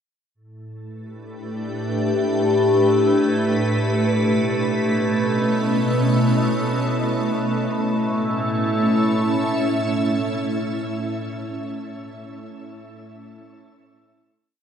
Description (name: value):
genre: ambient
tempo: free time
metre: none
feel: none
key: A mixolydian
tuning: A4 = 440 Hz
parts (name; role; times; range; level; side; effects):
- soft additive organ-like pad; sustained chords; 1.5-11.6 s; A2 to E5; -20 LUFS; equal; ensemble chorus, built-in reverb, shimmer reverb
- overtone-sweeping drone; drone; 0.9-11.1 s; A3 to E4; -27 LUFS; right 1 dB; chorus, built-in reverb
room: wet plate reverb, RT60 3.3 s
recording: dreamy mix soaked in reverb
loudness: -18 LUFS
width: side -8 dB against mid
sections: 0.3-7.7 A section; 7.7-11.4 final chord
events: none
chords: 0.3 A7sus4; 4.0 B9; 7.7 A